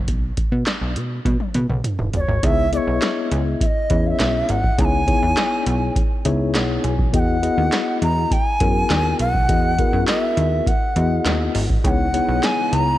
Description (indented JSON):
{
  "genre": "early-eighties boogie funk",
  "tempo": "102 BPM",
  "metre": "4/4",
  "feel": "straight",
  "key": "C# dorian",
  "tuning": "A4 = 440 Hz",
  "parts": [
    { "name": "plucky analog bass", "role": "bass", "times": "0.0-13.0 s", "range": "E1 to B2", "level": "-22 LUFS", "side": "equal", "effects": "none" },
    { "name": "electro analog drum machine", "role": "drums", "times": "0.1-12.9 s", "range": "handclaps, hi-hat, kick drum, snare drum, toms", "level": "-22 LUFS", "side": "equal", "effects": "none" },
    { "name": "breathy bright long shakuhachi", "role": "melody", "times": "2.2-13.0 s", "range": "C#5 to A#5", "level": "-22 LUFS", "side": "right 1 dB", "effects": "none" },
    { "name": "mellow tine electric piano", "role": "accompaniment", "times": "2.4-13.0 s", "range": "B3 to G#5", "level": "-23 LUFS", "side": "left 4 dB", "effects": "medium stereo tremolo, slapback echo" },
    { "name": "string machine, full ensemble", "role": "sustained chords", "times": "11.8-13.0 s", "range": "C#3 to D#5", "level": "-30 LUFS", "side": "left 2 dB", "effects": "ensemble chorus" }
  ],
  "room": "light reverb, digital ambience",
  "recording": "none",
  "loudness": "-17 LUFS",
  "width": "side -14 dB against mid",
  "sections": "0.0-2.4 A section; 2.4-13.0 B section",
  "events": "drum fill 1.3-2.4; tine electric piano fill 6.0-7.1",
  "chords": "0.1 B5; 2.4 C#m9; 7.1 Emaj9; 11.8 C#m9"
}